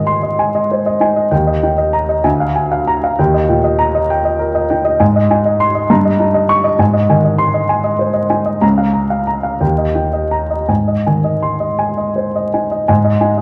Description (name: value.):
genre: classical, romantic character piece for solo piano.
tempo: 52-68 BPM (dotted quarters).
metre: 6/8.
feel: rubato.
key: Ab major.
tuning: A4 = 440 Hz.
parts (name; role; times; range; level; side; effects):
warm baby grand piano; solo; 0.0-13.4 s; Db2 to Db6; -14 LUFS; equal; none.
room: wet recital hall reverb, RT60 1.4 s.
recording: dark, warm production, vinyl crackle.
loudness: -14 LUFS.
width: mono.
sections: 0.0-12.9 A section.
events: none.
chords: 0.0 Ab; 1.3 Eb; 2.2 Bb7/D; 3.2 Eb; 5.0 Ab; 5.9 Eb7/G; 6.8 Ab; 8.6 Bbm/Db; 9.6 Eb; 10.7 Ab; 12.9 Ab5.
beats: 0.40 | 1.31 2.24 | 3.19 4.09 | 5.01 5.90 | 6.80 7.70 | 8.63 9.61 | 10.69 11.79 | 12.89.